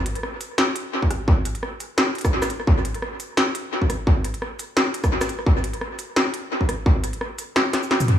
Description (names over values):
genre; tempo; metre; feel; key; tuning
drum and bass; 172 BPM; 4/4; swing 55% on 16ths, half-time; none; none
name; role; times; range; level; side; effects
industrial drum kit; drums; 0.1-8.2 s; hi-hat, rim click, shaker, snare drum, toms; -22 LUFS; equal; dub echo
electronic kick drum; drums; 1.0-6.9 s; none; -20 LUFS; equal; distortion
room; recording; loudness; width
light reverb; echo-heavy mix, small room ambience; -20 LUFS; side -10 dB against mid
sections
0.0-8.2 A section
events
kick drops out 7.6-8.2; drum fill 7.7-8.2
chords
none